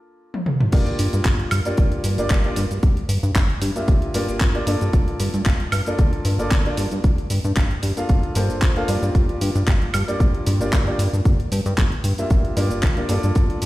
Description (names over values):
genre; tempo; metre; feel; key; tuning
nu-disco, nu disco; 114 BPM; 4/4; swing 54% on 16ths; G minor; A4 = 441 Hz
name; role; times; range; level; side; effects
dark grand piano; accompaniment; 0.0-13.7 s; Bb3 to F5; -26 LUFS; equal; vintage 12-bit sampler grit, ping-pong delay
pop drum kit; drums; 0.3-13.7 s; crash cymbal, handclaps, hi-hat, shaker, toms, woodblock; -27 LUFS; right 1 dB; none
chorused synth bass; bass; 0.7-13.7 s; G1 to G2; -22 LUFS; equal; sidechain pumping
electronic kick drum; drums; 0.7-13.5 s; none; -18 LUFS; equal; none
room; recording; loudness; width
little or no reverb; played on a big sound system in a bare room, stone room reverb; -18 LUFS; side -17 dB against mid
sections
0.7-13.7 A section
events
break 0.0-0.7; drum fill 0.3-0.7; drop 0.7-13.7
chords
0.0 Bbmaj7; 0.7 Gm7; 4.9 Bbmaj7/G; 9.1 Gm7